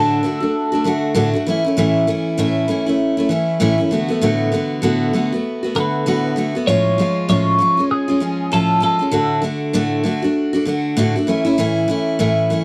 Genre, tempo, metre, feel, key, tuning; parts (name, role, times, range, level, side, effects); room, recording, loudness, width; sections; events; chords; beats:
acoustic pop; 98 BPM; 4/4; swing 60% on 16ths; A major; A4 = 440 Hz
twelve-string electric guitar; melody; 0.0-1.4, 5.8-9.4 s; G#4 to C#5; -21 LUFS; equal; phaser
picked steel-string acoustic guitar; accompaniment; 0.0-12.6 s; A2 to F#4; -19 LUFS; equal
light reverb; dry, close 1970s-style studio recording; -18 LUFS; mono
0.0-12.6 A section
0.0 D/A; 1.5 A; 3.9 Bm7/A; 6.7 C#/A; 9.1 D/A; 11.3 A
0.55 1.16 | 1.77 2.38 3.00 3.61 | 4.22 4.83 5.45 6.06 | 6.67 7.28 7.90 8.51 | 9.12 9.73 10.35 10.96 | 11.57 12.19